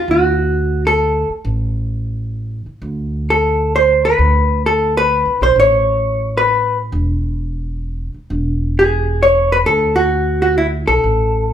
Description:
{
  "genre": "jazz, small-group swing and bop",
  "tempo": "131 BPM",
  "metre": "3/4",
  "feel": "swing 66% on 8ths",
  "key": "unclear",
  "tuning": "A4 = 440 Hz",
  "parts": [
    { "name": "vintage hollow-body jazz guitar", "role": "melody", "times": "0.0-11.5 s", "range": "E4 to C#5", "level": "-13 LUFS", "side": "equal", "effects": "none" },
    { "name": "upright bass", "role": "bass", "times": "0.1-11.5 s", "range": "E1 to D2", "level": "-19 LUFS", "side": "equal", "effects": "none" }
  ],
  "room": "moderate large studio reverb, RT60 1.0 s",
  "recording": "band playing live in one room",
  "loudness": "-13 LUFS",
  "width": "side -9 dB against mid",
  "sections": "0.0-11.5 A section",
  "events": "none",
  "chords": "0.1 D; 1.5 N.C.; 2.8 D5; 4.2 Bm7; 5.6 A; 8.3 E; 9.7 D"
}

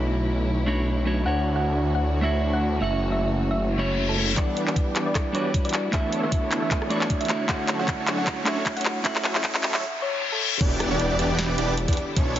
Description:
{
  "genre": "future bass",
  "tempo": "154 BPM",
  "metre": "4/4",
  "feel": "swing 55% on 16ths, half-time",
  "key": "unclear",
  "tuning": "A4 = 439 Hz",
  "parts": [
    { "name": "clean electric guitar", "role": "accompaniment", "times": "0.0-9.8 s", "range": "D3 to F#5", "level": "-29 LUFS", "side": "right 1 dB", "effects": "sidechain pumping" },
    { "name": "warm studio string section", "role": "sustained chords", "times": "0.0-12.4 s", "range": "D3 to C#5", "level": "-37 LUFS", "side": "left 1 dB", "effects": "vintage 12-bit sampler grit, sidechain pumping, low-pass filter" },
    { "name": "wide detuned saw bass", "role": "bass", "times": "0.0-4.4, 10.6-12.4 s", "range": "E1 to E2", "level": "-25 LUFS", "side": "equal", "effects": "chorus, sidechain pumping" },
    { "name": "downlifter, reverse cymbal, riser and impact", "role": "sound effects", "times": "0.0-12.2 s", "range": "none", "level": "-33 LUFS", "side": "left 3 dB", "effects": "none" },
    { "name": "thumb-piano-like synth pluck", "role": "melody", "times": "1.3-10.5 s", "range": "A4 to F#5", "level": "-31 LUFS", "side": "equal", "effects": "chorus, sidechain pumping, dub echo" },
    { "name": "supersaw chords", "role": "riff", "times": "4.4-12.4 s", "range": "E3 to D5", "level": "-29 LUFS", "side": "right 1 dB", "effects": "sidechain pumping, low-pass filter" },
    { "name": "electronic kick drum", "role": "drums", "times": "4.4-12.3 s", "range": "none", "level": "-25 LUFS", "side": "equal", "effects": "none" },
    { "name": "trap drum kit", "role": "drums", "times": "4.4-12.4 s", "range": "crash cymbal, handclaps, hi-hat, rim click, snare drum", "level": "-28 LUFS", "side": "equal", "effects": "high-pass filter on hats, low-pass filter on hats, high-pass filter on snare, low-pass filter on snare, high-pass filter on cymbals, low-pass filter on cymbals" },
    { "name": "airy dreamy lead", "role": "arpeggios", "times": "10.6-12.4 s", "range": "C#5 to D5", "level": "-32 LUFS", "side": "right 1 dB", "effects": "chorus, sidechain pumping, ping-pong delay" }
  ],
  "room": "light reverb, digital ambience",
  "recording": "heavily compressed radio sound, multiband compression, high-pass filter, nothing above 7.6 kHz",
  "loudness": "-22 LUFS",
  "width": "side -12 dB against mid",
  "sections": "0.0-4.4 A section; 4.4-10.6 B section; 10.6-12.4 C section",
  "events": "reverse cymbal 3.7-4.4, 9.8-10.6; build-up 4.4-10.6; drum fill 4.4-9.8; filter sweep on supersaw synth 4.4-10.6; filter sweep 4.4-10.6; drop 10.6-12.4; impact 10.6-12.2",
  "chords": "0.0 Bm11; 1.3 Dmaj7; 2.8 F#m7; 4.4 Em7; 5.9 Bm11; 7.5 Dmaj7; 9.0 F#m7; 10.6 Em7"
}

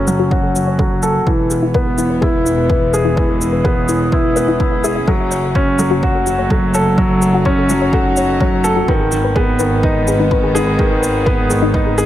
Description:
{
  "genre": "piano and strings electronica",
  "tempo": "126 BPM",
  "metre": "4/4",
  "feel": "straight",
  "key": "F# dorian",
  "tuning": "A4 = 440 Hz",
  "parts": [
    { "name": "warm studio string section", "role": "sustained chords", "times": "0.0-12.1 s", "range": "D#3 to D#4", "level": "-28 LUFS", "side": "equal", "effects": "sidechain pumping" },
    { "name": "felt-muted upright piano", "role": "riff", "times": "0.0-12.1 s", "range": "D#3 to A4", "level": "-16 LUFS", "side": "equal", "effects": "low-pass filter, ping-pong delay" },
    { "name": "warm chamber double bass section", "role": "bass", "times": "0.0-12.1 s", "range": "E1 to G#1", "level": "-20 LUFS", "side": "equal", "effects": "sidechain pumping" },
    { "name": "soft round pluck", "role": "arpeggios", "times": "0.1-12.1 s", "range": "D#4 to E6", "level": "-23 LUFS", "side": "left 5 dB", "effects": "chorus, sidechain pumping, ping-pong delay" },
    { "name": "shaker", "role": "drums", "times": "0.1-12.1 s", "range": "none", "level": "-27 LUFS", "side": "equal", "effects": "overdrive" },
    { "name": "electronic kick drum", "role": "drums", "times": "0.3-11.8 s", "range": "none", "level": "-18 LUFS", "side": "right 1 dB", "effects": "overdrive" }
  ],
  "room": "light reverb, small room ambience",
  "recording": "none",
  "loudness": "-12 LUFS",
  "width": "side -13 dB against mid",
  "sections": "0.0-12.1 A section",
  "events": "fade-in on string section 0.0-12.1; filter sweep on felt piano 0.0-12.1; filter sweep on synth arpeggio sound 0.0-12.1",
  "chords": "0.0 F#m; 1.3 E; 5.1 F#m; 8.9 G#m"
}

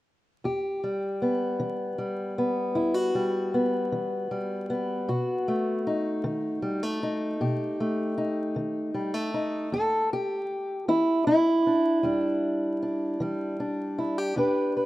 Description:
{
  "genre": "acoustic country blues, solo or duo",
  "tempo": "52 BPM (dotted quarters)",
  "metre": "12/8",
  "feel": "straight",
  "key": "E harmonic minor, E minor from 9.7 s",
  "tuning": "A4 = 440 Hz",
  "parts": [
    { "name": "fingerpicked steel-string acoustic guitar", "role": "solo", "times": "0.4-14.9 s", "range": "E2 to B4", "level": "-25 LUFS", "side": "equal", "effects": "none" }
  ],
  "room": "light reverb, small room ambience",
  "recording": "rough home demo mix, vinyl crackle",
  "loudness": "-25 LUFS",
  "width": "side -16 dB against mid",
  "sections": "0.4-9.7 A section; 9.7-14.9 B section",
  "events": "steel-string acoustic guitar solo 9.7-14.9",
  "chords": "0.4 Em; 5.1 B7; 9.7 Em7"
}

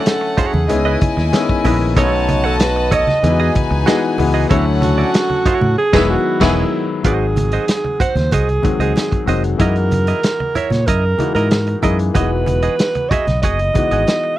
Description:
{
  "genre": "lush 1970s-style soul",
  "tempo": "94 BPM",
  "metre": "4/4",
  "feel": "straight",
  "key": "E major",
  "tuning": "A4 = 440 Hz",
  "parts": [
    { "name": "warm alto saxophone", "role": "melody", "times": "0.0-14.4 s", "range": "E4 to D#5", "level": "-19 LUFS", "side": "right 3 dB", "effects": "none" },
    { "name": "warm studio violin section", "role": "second line", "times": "0.0-6.6 s", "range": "A3 to A5", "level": "-22 LUFS", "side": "left 3 dB", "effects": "none" },
    { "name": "clear grand piano", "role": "accompaniment", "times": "0.0-14.4 s", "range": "D3 to G#4", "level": "-21 LUFS", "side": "left 5 dB", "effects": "none" },
    { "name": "direct-recorded clean electric guitar", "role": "riff", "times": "0.0-14.3 s", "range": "E4 to F#5", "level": "-22 LUFS", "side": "right 7 dB", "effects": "none" },
    { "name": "vintage drum kit", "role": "drums", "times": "0.1-14.2 s", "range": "crash cymbal, hi-hat, kick drum, snare drum", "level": "-18 LUFS", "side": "equal", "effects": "none" },
    { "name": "congas", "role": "percussion", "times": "0.1-14.2 s", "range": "none", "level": "-25 LUFS", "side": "right 2 dB", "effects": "none" },
    { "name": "fingered electric bass", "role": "bass", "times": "0.4-14.0 s", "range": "E1 to A#2", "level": "-18 LUFS", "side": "equal", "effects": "none" }
  ],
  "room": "little or no reverb",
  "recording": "dry, close 1970s-style studio recording",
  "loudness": "-13 LUFS",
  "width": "side -14 dB against mid",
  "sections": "0.0-7.0 A section; 7.0-14.4 B section",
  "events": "band accent 5.8-7.0",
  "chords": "0.0 Dmaj9; 0.7 C#m9; 2.0 B9; 3.2 Emaj9; 4.5 Dmaj9; 5.8 Emaj9; 7.0 G#7; 9.6 F#13; 12.2 Emaj9"
}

